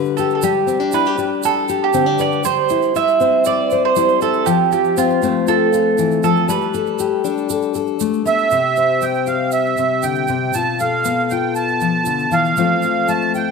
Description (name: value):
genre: acoustic folk duo or small band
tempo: 119 BPM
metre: 4/4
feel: straight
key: C major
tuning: A4 = 437 Hz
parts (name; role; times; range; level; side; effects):
- fingerpicked steel-string acoustic guitar; accompaniment; 0.0-13.5 s; B2 to C5; -18 LUFS; left 8 dB; none
- egg shaker; percussion; 0.0-13.5 s; none; -32 LUFS; right 16 dB; none
- mandolin; second line; 0.2-8.0 s; F4 to E5; -17 LUFS; right 8 dB; none
- accordion; melody; 8.3-13.5 s; E5 to A5; -17 LUFS; right 4 dB; light tremolo tuning
room: wet echo chamber reverb, RT60 2.2 s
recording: 1960s-style stereo with parts hard left and right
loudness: -15 LUFS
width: side -4 dB against mid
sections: 0.0-8.5 A section; 8.5-13.5 B section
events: mandolin solo 0.0-8.5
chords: 0.0 G; 2.4 C/G; 4.5 F; 6.5 Gadd9; 8.5 Cadd9; 10.5 Bm7b5; 12.6 F